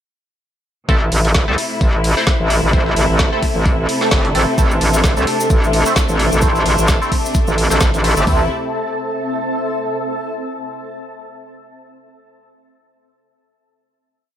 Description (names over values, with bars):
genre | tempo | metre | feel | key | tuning
bass house | 130 BPM | 4/4 | swing 56% on 16ths | A minor | A4 = 440 Hz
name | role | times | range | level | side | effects
bright studio string section | sustained chords | 0.9-8.5 s | C3 to E4 | -23 LUFS | left 1 dB | sidechain pumping, low-pass filter
band-passed chord stab | stabs | 0.9-8.4 s | A3 to D5 | -22 LUFS | right 1 dB | phaser, analog chorus, vintage 12-bit sampler grit, sidechain pumping, tape echo
metallic wobble bass | bass | 0.9-8.5 s | G1 to C2 | -16 LUFS | equal | chorus, tube saturation, sidechain pumping
dusty soul sampler-style drum kit | drums | 0.9-8.2 s | hi-hat, snare drum, tambourine | -30 LUFS | left 2 dB | none
garage drum kit | drums | 0.9-8.4 s | hi-hat, kick drum, toms | -16 LUFS | equal | overdrive, studio reverb
granular cloud pad | texture | 2.2-10.1 s | C4 to A5 | -22 LUFS | equal | built-in reverb, analog chorus, sidechain pumping
garage drum kit | drums | 1.1-8.1 s | hi-hat, snare drum | -22 LUFS | right 1 dB | overdrive, studio reverb
cabasa | percussion | 4.6-8.2 s | none | -28 LUFS | left 1 dB | none
room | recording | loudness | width
light reverb | none | -14 LUFS | side -10 dB against mid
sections
0.9-8.3 drop; 8.3-10.1 final chord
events
drop 0.9-8.3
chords
0.9 Am